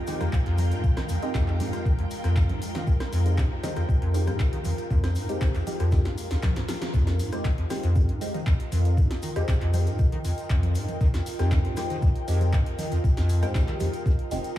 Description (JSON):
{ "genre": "acid house", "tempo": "118 BPM", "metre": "4/4", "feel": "straight", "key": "F minor", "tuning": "A4 = 439 Hz", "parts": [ { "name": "string machine, full ensemble", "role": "sustained chords", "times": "0.0-6.9 s", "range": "Ab3 to G5", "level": "-37 LUFS", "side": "equal", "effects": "ensemble chorus, sidechain pumping" }, { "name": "ethereal airy pad", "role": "texture", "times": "0.0-14.6 s", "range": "F4 to Bb5", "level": "-36 LUFS", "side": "equal", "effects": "ensemble chorus, built-in reverb, sidechain pumping" }, { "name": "acid bass, square", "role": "riff", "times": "0.1-14.4 s", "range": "F1 to F3", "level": "-26 LUFS", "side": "equal", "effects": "tube saturation, analog chorus, cassette tape, diffuse ambient delay" }, { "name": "filtered dub chord stab", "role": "stabs", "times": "0.1-14.4 s", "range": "Ab3 to G4", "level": "-35 LUFS", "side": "equal", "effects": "phaser, analog chorus, diffuse ambient delay" }, { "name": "punchy analog drum machine", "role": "drums", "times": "0.1-14.5 s", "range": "congas, handclaps, hi-hat, rim click, snare drum", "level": "-36 LUFS", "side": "equal", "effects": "overdrive" }, { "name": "maracas", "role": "percussion", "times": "0.1-14.5 s", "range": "none", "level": "-48 LUFS", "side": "left 4 dB", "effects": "none" }, { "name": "electronic kick drum", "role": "drums", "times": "0.3-14.2 s", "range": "none", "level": "-23 LUFS", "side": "equal", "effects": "none" } ], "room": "light reverb", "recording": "small room ambience", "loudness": "-22 LUFS", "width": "side -14 dB against mid", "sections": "0.0-6.9 A section; 6.9-14.6 B section", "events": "drum fill 5.9-6.9; band accent 6.8; drop 6.9-14.6", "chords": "0.0 Fm7" }